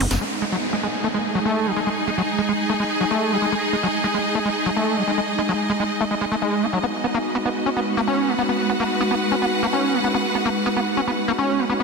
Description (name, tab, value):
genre	trance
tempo	145 BPM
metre	4/4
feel	straight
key	unclear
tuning	A4 = 440 Hz
part	swarming drone	sustained chords	0.1-11.8 s	G#3 to D#4	-26 LUFS	right 2 dB	built-in reverb
part	screaming distorted acid line	riff	0.0-11.8 s	F#3 to C#4	-23 LUFS	equal	distortion, chorus, auto-pan, digital delay
part	zap and downlifter	sound effects	0.0-3.5 s	none	-30 LUFS	right 1 dB	none
part	clear symphonic string section	texture	0.2-11.8 s	B3 to G#5	-24 LUFS	equal	none
room	wet lush hall reverb, RT60 2.2 s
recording	dense, heavily limited modern master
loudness	-19 LUFS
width	side -4 dB against mid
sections	0.2-11.8 A section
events	filter sweep on synth drone 0.2-11.8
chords	0.2 G#5; 6.8 B5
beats	| 0.21 0.63 1.04 1.45 | 1.87 2.28 2.69 3.11 | 3.52 3.94 4.35 4.76 | 5.18 5.59 6.00 6.42 | 6.83 7.25 7.66 8.07 | 8.49 8.90 9.32 9.73 | 10.14 10.56 10.97 11.38 | 11.80